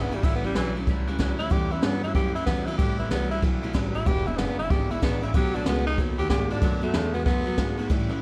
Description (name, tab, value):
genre	rockabilly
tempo	188 BPM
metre	4/4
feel	swing 64% on 8ths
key	unclear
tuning	A4 = 437 Hz
part	raspy tenor saxophone	melody	0.0-7.9 s	E3 to G4+21c	-33 LUFS	equal	none
part	picked steel-string acoustic guitar	accompaniment	0.0-8.2 s	E2 to F#4	-35 LUFS	equal	none
part	electric guitar through a small old amp	riff	0.0-8.2 s	E2 to G#3	-36 LUFS	equal	harmonic tremolo
part	clear double bass	bass	0.0-8.2 s	E1 to A2	-32 LUFS	equal	none
part	jazz brush drum kit	drums	0.1-8.2 s	kick drum, ride cymbal, snare drum	-28 LUFS	equal	none
room	light reverb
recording	cassette tape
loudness	-25 LUFS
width	mono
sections	0.0-8.2 A section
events	tenor saxophone solo 0.0-8.2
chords	0.2 A7; 2.8 Am7; 4.1 E7; 5.3 B7